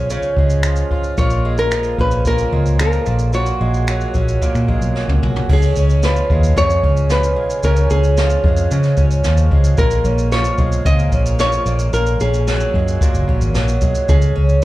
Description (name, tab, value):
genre	acoustic pop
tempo	112 BPM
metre	4/4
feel	straight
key	Db mixolydian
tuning	A4 = 443 Hz
part	nylon-string guitar	melody	0.0-14.6 s	F4 to Eb5	-20 LUFS	left 1 dB	slapback echo
part	fingerpicked twelve-string acoustic guitar	accompaniment	0.0-14.6 s	Bb2 to Gb4	-21 LUFS	right 2 dB	slapback echo
part	vintage muted fingered electric bass	bass	0.0-14.6 s	Gb1 to Db3	-16 LUFS	equal	none
part	jazz brush drum kit	drums	0.1-14.6 s	crash cymbal, finger snaps, kick drum, shaker, snare drum, toms	-20 LUFS	equal	none
room	little or no reverb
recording	live gig heard through the venue's PA, club reverb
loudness	-13 LUFS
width	side -16 dB against mid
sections	0.0-5.5 A section; 5.5-14.6 B section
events	drum fill 5.0-5.5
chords	0.0 Db; 1.2 Bbm7; 3.1 Gbadd9/Bb; 5.5 Db; 9.8 Bbm7; 11.7 Gbadd9/Bb; 14.1 Db5